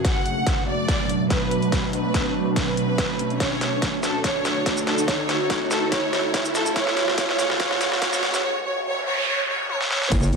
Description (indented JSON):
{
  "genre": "heavy wobble dubstep",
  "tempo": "143 BPM",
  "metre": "4/4",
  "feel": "half-time",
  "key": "unclear",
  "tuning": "A4 = 440 Hz",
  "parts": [
    { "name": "clear studio violin section", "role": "melody", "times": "0.0-10.1 s", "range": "A4 to F#5", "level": "-26 LUFS", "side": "right 2 dB", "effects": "digital delay" },
    { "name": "evolving wavetable pad", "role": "sustained chords", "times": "0.0-10.4 s", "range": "C#2 to A4", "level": "-26 LUFS", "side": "right 1 dB", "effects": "ensemble chorus, built-in reverb, sidechain pumping" },
    { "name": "dubstep drum kit", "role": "drums", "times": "0.0-10.4 s", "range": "crash cymbal, hi-hat, shaker, snare drum, toms", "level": "-26 LUFS", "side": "equal", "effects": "high-pass filter on hats, high-pass filter on snare, high-pass filter on perc, high-pass filter on toms, high-pass filter on cymbals, high-pass filter on room" },
    { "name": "electronic kick drum", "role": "drums", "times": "0.0-10.2 s", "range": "none", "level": "-26 LUFS", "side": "equal", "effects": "overdrive" },
    { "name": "riser and noise sweep", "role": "sound effects", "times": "0.2-10.1 s", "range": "none", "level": "-28 LUFS", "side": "right 1 dB", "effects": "none" },
    { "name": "wobble bass", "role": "bass", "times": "10.1-10.4 s", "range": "F#1", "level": "-20 LUFS", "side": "equal", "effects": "chorus, overdrive" }
  ],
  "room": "moderate plate reverb, RT60 2.0 s",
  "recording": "dark, warm production, high-pass filter",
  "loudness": "-20 LUFS",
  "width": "side -4 dB against mid",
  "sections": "0.0-10.1 A section",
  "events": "build-up 0.0-10.1; drum fill 0.0-8.4, 9.7-10.1; filter sweep on ambient pad 0.0-10.1; filter sweep 0.0-10.1; riser 0.2-8.4; noise sweep 8.4-10.1",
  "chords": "0.0 Bm7; 3.4 D; 6.8 C#sus4"
}